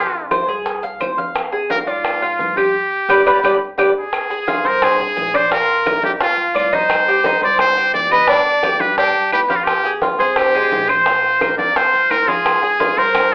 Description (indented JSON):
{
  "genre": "latin, Cuban son and guajira",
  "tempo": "173 BPM",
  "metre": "4/4",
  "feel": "straight",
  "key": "unclear",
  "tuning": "A4 = 438 Hz",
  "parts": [
    { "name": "trumpet with metal mute", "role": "melody", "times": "0.0-13.3 s", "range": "F4 to Eb5", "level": "-19 LUFS", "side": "equal", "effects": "slapback echo" },
    { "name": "Cuban tres", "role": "arpeggios", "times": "0.0-13.3 s", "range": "Ab3 to F5", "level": "-20 LUFS", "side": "equal", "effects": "none" },
    { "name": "upright bass", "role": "bass", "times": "0.0-13.3 s", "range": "G1 to Ab2", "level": "-40 LUFS", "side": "equal", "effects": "none" },
    { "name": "bongos", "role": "percussion", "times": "0.1-13.3 s", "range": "none", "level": "-26 LUFS", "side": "equal", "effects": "none" },
    { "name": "congas", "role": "percussion", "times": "0.1-13.3 s", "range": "none", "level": "-31 LUFS", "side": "equal", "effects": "none" },
    { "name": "claves", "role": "percussion", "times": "0.3-13.3 s", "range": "none", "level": "-31 LUFS", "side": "equal", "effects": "none" },
    { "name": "maracas", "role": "percussion", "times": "0.3-13.3 s", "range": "none", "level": "-48 LUFS", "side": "equal", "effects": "none" }
  ],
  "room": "wet small room reverb, RT60 0.5 s",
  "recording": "heard from further back in the room, telephone sound",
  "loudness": "-16 LUFS",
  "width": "mono",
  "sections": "0.0-4.1 A section; 4.1-13.3 B section",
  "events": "band accent 2.7-4.1; drum fill 3.4-4.1",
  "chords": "0.0 Fm; 1.4 Ddim/F; 2.7 G; 4.1 Fm; 5.5 Bb; 6.9 Cm; 8.3 G; 9.7 Fmadd9; 11.1 Bbsus2; 12.5 Ab6",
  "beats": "0.32 0.66 1.01 | 1.36 1.70 2.05 2.40 | 2.75 3.09 3.44 3.79 | 4.13 4.48 4.83 5.17 | 5.52 5.87 6.21 6.56 | 6.90 7.25 7.60 7.94 | 8.29 8.64 8.98 9.33 | 9.68 10.03 10.37 10.72 | 11.07 11.41 11.76 12.11 | 12.45 12.80 13.15"
}